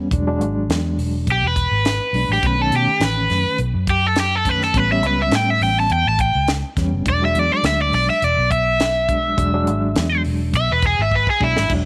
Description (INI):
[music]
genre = straight-eighth soul blues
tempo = 104 BPM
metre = 4/4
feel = swing 53% on 16ths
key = E mixolydian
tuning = A4 = 439 Hz
[part]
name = mellow reed electric piano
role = accompaniment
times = 0.0-11.8 s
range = D#3 to D4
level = -26 LUFS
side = equal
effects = fast tremolo
[part]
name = vintage muted fingered electric bass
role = bass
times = 0.0-11.9 s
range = E1 to B2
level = -24 LUFS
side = equal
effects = transformer saturation
[part]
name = tight funk drum kit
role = drums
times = 0.1-11.8 s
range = crash cymbal, hi-hat, kick drum, snare drum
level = -26 LUFS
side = equal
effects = none
[part]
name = cranked stack guitar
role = melody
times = 1.3-11.7 s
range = E4 to A5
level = -21 LUFS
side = equal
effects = overdrive
[sound]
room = light reverb, studio ambience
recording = none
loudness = -18 LUFS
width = mono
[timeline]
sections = 0.0-11.7 A section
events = overdriven electric guitar solo 0.0-11.7; drum fill 11.1-11.7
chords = 0.1 E7; 2.4 B7; 4.7 A7; 7.1 E7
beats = | 0.11 0.69 1.27 1.85 | 2.43 3.01 3.59 4.17 | 4.75 5.33 5.91 6.49 | 7.07 7.64 8.22 8.80 | 9.38 9.96 10.54 11.12 | 11.70